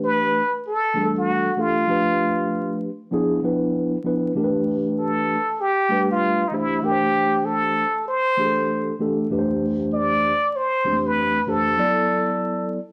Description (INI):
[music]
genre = hip hop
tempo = 97 BPM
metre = 4/4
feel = swing 62% on 16ths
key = E phrygian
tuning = A4 = 440 Hz
[part]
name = trumpet with plunger mute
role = melody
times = 0.0-12.7 s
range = D#4 to D5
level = -23 LUFS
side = equal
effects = none
[part]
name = mellow tine electric piano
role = accompaniment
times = 0.0-12.8 s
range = F2 to D5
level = -25 LUFS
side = equal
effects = none
[sound]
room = moderate studio reverb, RT60 0.8 s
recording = vinyl crackle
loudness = -22 LUFS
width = mono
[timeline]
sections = 0.0-12.9 A section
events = none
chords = 0.0 Em7; 1.9 Bm7b5; 3.1 E7b9; 4.4 A7(no3); 6.8 C69; 9.3 Fmaj9; 11.8 D69/F#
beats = 0.03 0.65 1.27 | 1.89 2.51 3.12 3.74 | 4.36 4.98 5.60 6.22 | 6.84 7.46 8.07 8.69 | 9.31 9.93 10.55 11.17 | 11.79 12.40